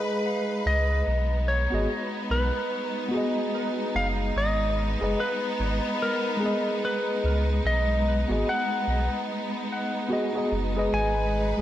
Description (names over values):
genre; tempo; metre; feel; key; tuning
trip hop; 73 BPM; 4/4; swing 59% on 16ths; unclear; A4 = 442 Hz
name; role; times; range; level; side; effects
clean lap steel guitar; melody; 0.0-11.6 s; A#4 to G#5; -29 LUFS; left 1 dB; tape echo
tine electric piano; accompaniment; 0.0-11.6 s; G#3 to D#5; -29 LUFS; equal; harmonic tremolo, tape echo
clear studio string section; sustained chords; 0.0-11.6 s; G#3 to B4; -30 LUFS; equal; none
soft dub sub bass; bass; 0.7-11.6 s; F#1 to C#2; -26 LUFS; equal; none
bowed-like drone; texture; 11.2-11.6 s; none; barely audible; none; none
room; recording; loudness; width
wet lush hall reverb, RT60 2.1 s; dreamy mix soaked in reverb; -24 LUFS; side -12 dB against mid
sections
0.0-11.6 A section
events
none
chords
0.0 G#m; 1.1 B6; 4.4 G#m; 7.6 B6; 10.9 G#m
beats
0.24 | 1.06 1.89 2.71 3.53 | 4.35 5.17 6.00 6.82 | 7.64 8.46 9.28 10.11 | 10.93